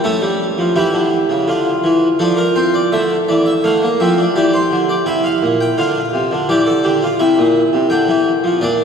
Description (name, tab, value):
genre	classical, baroque-style 3-part fugue for harpsichord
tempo	84 BPM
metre	4/4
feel	straight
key	unclear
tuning	A4 = 440 Hz
part	harpsichord	solo	0.0-8.8 s	Bb2 to G5	-13 LUFS	equal	none
room	wet cathedral reverb, RT60 4.5 s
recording	dark, warm production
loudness	-13 LUFS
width	side -6 dB against mid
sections	0.0-2.9 A section; 2.9-8.8 B section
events	none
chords	0.1 A; 1.5 Dm; 4.4 C; 5.8 Fmaj13/C; 7.2 C9/Bb